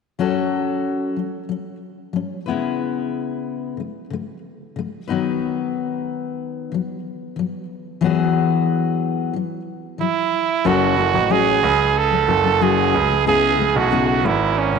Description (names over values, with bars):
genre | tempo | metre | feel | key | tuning
pop | 92 BPM | 4/4 | straight | F# minor | A4 = 443 Hz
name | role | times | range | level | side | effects
fingerpicked steel-string acoustic guitar | accompaniment | 0.2-14.8 s | C#3 to B4 | -21 LUFS | left 6 dB | none
growling trumpet | melody | 10.0-14.8 s | C#4 to A4 | -17 LUFS | right 9 dB | none
clear concert grand piano | bass | 10.7-14.8 s | F#1 to C#2 | -21 LUFS | right 2 dB | none
room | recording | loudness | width
wet plate reverb, RT60 2.7 s | 1960s-style stereo with parts hard left and right | -18 LUFS | side -5 dB against mid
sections
0.2-10.6 A section; 10.6-14.8 B section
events
none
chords
0.2 F#m; 2.5 C#m7; 5.1 B/D#; 8.0 Eadd9; 10.6 F#m; 12.9 C#m7